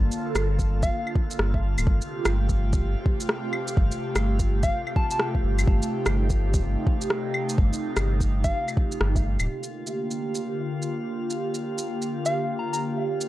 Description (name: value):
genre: future garage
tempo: 126 BPM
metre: 4/4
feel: swing 63% on 16ths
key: G minor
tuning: A4 = 438 Hz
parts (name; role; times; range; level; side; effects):
- airy breathy pad; sustained chords; 0.0-13.3 s; C3 to A4; -29 LUFS; right 1 dB; chorus, phaser, sidechain pumping
- warm sub bass; bass; 0.0-9.5 s; D1 to G1; -24 LUFS; equal; sidechain pumping
- drifting glass-harmonics texture; texture; 0.0-13.3 s; F4 to F5; -38 LUFS; left 3 dB; chorus, built-in reverb
- electronic shaker, rim click and claves; drums; 0.1-13.3 s; none; -28 LUFS; equal; overdrive, studio reverb
- electronic kick drum; drums; 0.6-9.2 s; none; -24 LUFS; equal; overdrive, studio reverb
- soft struck synth lead; melody; 0.8-1.1, 4.6-5.2, 8.4-8.7, 12.3-12.8 s; F5 to Bb5; -30 LUFS; left 1 dB; chorus, tremolo, analog delay
room: little or no reverb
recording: dry, gritty hardware recording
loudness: -23 LUFS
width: side -15 dB against mid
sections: 0.0-9.5 A section; 9.5-13.3 B section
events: band accent 9.0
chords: 0.0 Gm7; 1.9 Fadd9/G; 9.5 Gm7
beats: 0.44 0.91 1.39 | 1.87 2.34 2.82 3.29 | 3.77 4.25 4.72 5.20 | 5.68 6.15 6.63 7.10 | 7.58 8.06 8.53 9.01 | 9.48 9.96 10.44 10.91 | 11.39 11.87 12.34 12.82